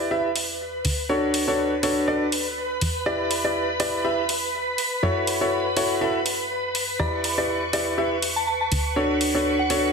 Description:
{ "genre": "piano house", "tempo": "122 BPM", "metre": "4/4", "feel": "swing 56% on 16ths", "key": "E dorian", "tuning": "A4 = 445 Hz", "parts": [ { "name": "string machine, violins", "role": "sustained chords", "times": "0.0-9.9 s", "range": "B4 to C#6", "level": "-28 LUFS", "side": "equal", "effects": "ensemble chorus" }, { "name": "clear grand piano", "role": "riff", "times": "0.0-9.9 s", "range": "D4 to E5", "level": "-23 LUFS", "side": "equal", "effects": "ping-pong delay" }, { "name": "plucky analog bass", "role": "bass", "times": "0.0-9.9 s", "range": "D2 to F#2", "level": "-32 LUFS", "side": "equal", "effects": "none" }, { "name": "electronic hi-hat", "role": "drums", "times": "0.4-9.8 s", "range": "none", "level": "-28 LUFS", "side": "equal", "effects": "none" }, { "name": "soft synth bell", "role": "melody", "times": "7.0-9.9 s", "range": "F#5 to B5", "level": "-28 LUFS", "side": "right 1 dB", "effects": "chorus, ping-pong delay" } ], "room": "wet plate reverb, RT60 1.1 s, digital ambience", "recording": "dense, heavily limited modern master", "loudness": "-21 LUFS", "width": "side -5 dB against mid", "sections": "0.0-9.9 A section", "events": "filter sweep on string machine 0.0-9.9", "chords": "0.0 Em; 0.8 Dmaj7; 2.8 Em7; 5.0 F#m7; 7.0 Em7; 8.7 Dmaj7" }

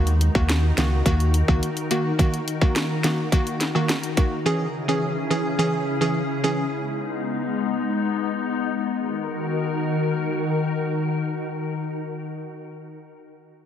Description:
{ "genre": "dancehall", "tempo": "106 BPM", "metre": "4/4", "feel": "straight", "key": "Eb phrygian", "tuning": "A4 = 440 Hz", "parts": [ { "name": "wavetable chord stab", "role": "accompaniment", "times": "0.0-6.7 s", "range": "Eb3 to Ab4", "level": "-24 LUFS", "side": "right 1 dB", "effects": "none" }, { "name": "glassy FM pad", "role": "sustained chords", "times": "0.0-12.0 s", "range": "Db3 to Bb4", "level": "-25 LUFS", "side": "left 3 dB", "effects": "ensemble chorus, built-in reverb, sidechain pumping" }, { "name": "sub bass with octave", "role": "bass", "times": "0.0-1.6 s", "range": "Db2 to Eb2", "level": "-20 LUFS", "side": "equal", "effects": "none" }, { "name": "island pop drum kit", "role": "drums", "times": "0.1-4.3 s", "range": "hi-hat, kick drum, rim click, snare drum", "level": "-22 LUFS", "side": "equal", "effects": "none" } ], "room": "light reverb, digital ambience", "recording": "heavily compressed radio sound, multiband compression", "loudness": "-21 LUFS", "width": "side -9 dB against mid", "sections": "0.0-9.0 A section; 9.0-11.2 B section", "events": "none", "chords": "0.0 Ebm; 4.5 Dbm; 6.7 Abm; 9.0 Ebm" }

